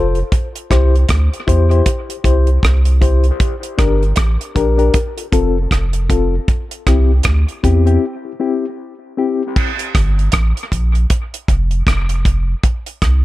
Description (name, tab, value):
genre	dub reggae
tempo	78 BPM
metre	4/4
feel	swing 58% on 16ths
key	G dorian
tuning	A4 = 442 Hz
part	mellow reed electric piano	stabs	0.0-9.4 s	C4 to C5	-19 LUFS	left 6 dB	fast tremolo, dub echo
part	warm sub bass	bass	0.0-13.2 s	F1 to E2	-14 LUFS	equal	none
part	damped 70s drum kit	drums	0.1-13.2 s	crash cymbal, hi-hat, kick drum, rim click	-17 LUFS	right 1 dB	none
room	studio ambience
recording	none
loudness	-13 LUFS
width	side -16 dB against mid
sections	0.0-9.6 A section; 9.6-13.2 B section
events	break 8.0-9.6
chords	0.3 C; 3.4 Gm; 4.9 F; 6.5 C; 9.6 Gm; 11.1 N.C.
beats	| 0.32 1.09 1.86 2.63 | 3.40 4.17 4.94 5.71 | 6.48 7.25 8.02 8.79 | 9.56 10.33 11.10 11.86 | 12.63